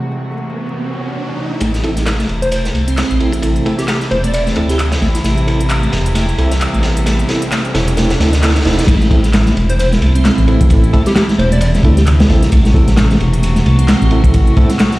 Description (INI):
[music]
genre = breakbeat, breaks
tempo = 132 BPM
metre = 4/4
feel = swing 58% on 16ths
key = A dorian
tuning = A4 = 440 Hz
[part]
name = dark chamber string section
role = sustained chords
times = 0.0-15.0 s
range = C3 to F#4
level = -21 LUFS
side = equal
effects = vintage 12-bit sampler grit, sidechain pumping
[part]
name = riser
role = sound effects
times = 0.0-8.9 s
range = none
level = -26 LUFS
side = right 2 dB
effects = none
[part]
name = tonewheel organ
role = riff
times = 1.6-14.9 s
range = A3 to G4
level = -21 LUFS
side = right 1 dB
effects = chorus vibrato, slow rotary speaker, vintage 12-bit sampler grit, low-pass filter, tape echo
[part]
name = dark detuned saw bass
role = bass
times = 1.6-14.5 s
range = E1 to D2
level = -14 LUFS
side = equal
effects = none
[part]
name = crunchy breakbeat drum kit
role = drums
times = 1.6-15.0 s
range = crash cymbal, kick drum, ride cymbal, snare drum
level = -16 LUFS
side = equal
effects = high-pass filter on kick, high-pass filter on cymbals, high-pass filter on snare, high-pass filter on room
[part]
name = house drum kit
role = drums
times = 1.6-15.0 s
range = handclaps, hi-hat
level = -25 LUFS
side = equal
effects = low-pass filter on hats, low-pass filter on snare
[part]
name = overdriven tine electric piano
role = stabs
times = 1.8-14.7 s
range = C4 to A4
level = -22 LUFS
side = right 2 dB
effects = fast tremolo, tape echo
[part]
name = plucky unison lead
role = melody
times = 2.4-4.4, 9.7-11.7 s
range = G4 to D5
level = -21 LUFS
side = equal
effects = small speaker sound, cassette tape, tape echo
[sound]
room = light reverb, small room reverb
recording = played on a big sound system in a bare room, stone room reverb, vinyl crackle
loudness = -11 LUFS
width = side -18 dB against mid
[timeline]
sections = 0.0-1.6 A section; 1.6-8.9 B section; 8.9-15.0 C section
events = riser 0.0-1.6, 1.6-8.9; build-up 1.6-8.9; drum fill 5.2-8.9; drop 8.9-15.0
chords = 0.0 Am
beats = 0.25 0.70 1.16 | 1.61 2.07 2.52 2.98 | 3.43 3.88 4.34 4.79 | 5.25 5.70 6.16 6.61 | 7.07 7.52 7.97 8.43 | 8.88 9.34 9.79 10.25 | 10.70 11.16 11.61 12.07 | 12.52 12.97 13.43 13.88 | 14.34 14.79